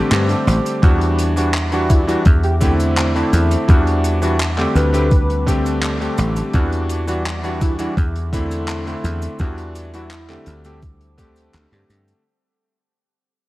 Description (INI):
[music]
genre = vaporwave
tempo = 84 BPM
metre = 4/4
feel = straight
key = unclear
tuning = A4 = 440 Hz
[part]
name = bright electric grand piano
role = accompaniment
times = 0.0-12.2 s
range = D3 to G4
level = -21 LUFS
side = equal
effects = wide subtle chorus, analog delay
[part]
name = warbly tape-like pad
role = sustained chords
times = 0.0-12.2 s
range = G3 to D6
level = -28 LUFS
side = equal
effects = chorus, built-in reverb, vintage 12-bit sampler grit
[part]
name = dry thumbed slap bass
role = bass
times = 0.1-12.1 s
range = A1 to G2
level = -19 LUFS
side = equal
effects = none
[part]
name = modern studio drum kit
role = drums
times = 0.1-12.2 s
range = cabasa, handclaps, hi-hat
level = -27 LUFS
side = equal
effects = gated reverb
[part]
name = electronic kick drum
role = drums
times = 0.8-11.3 s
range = none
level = -14 LUFS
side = equal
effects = none
[part]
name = warm velvety synth lead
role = melody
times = 1.9-10.5 s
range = E4 to B4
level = -28 LUFS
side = equal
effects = chorus, analog delay
[sound]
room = light reverb, studio reverb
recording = cassette tape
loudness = -15 LUFS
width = side -18 dB against mid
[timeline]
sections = 0.0-12.3 A section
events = fade-out 4.6-12.3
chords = 0.0 D7sus4; 0.8 Em9; 2.3 C69/E; 3.7 Em9; 4.8 D7sus4; 6.5 Em9; 8.0 C69/E; 9.4 Em9; 10.5 D7sus4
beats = 0.11 | 0.83 1.54 2.26 2.97 | 3.69 4.40 5.11 5.83 | 6.54 7.26 7.97 8.69 | 9.40 10.11 10.83 11.54